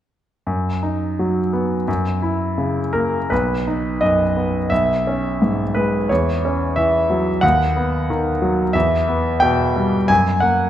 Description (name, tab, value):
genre	classical, romantic character piece for solo piano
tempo	79-92 BPM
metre	2/4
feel	rubato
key	B major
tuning	A4 = 436 Hz
part	clear concert grand piano	solo	0.5-10.7 s	B1 to G#5	-16 LUFS	equal	none
room	moderate concert hall reverb, RT60 1.8 s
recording	none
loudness	-16 LUFS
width	side -11 dB against mid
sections	0.5-3.3 A section; 3.3-10.7 B section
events	none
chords	0.5 B/F#; 1.9 F#7; 3.3 B; 4.7 C#m/B; 6.1 F#5/E; 7.4 B/D#; 8.7 Em; 10.1 F#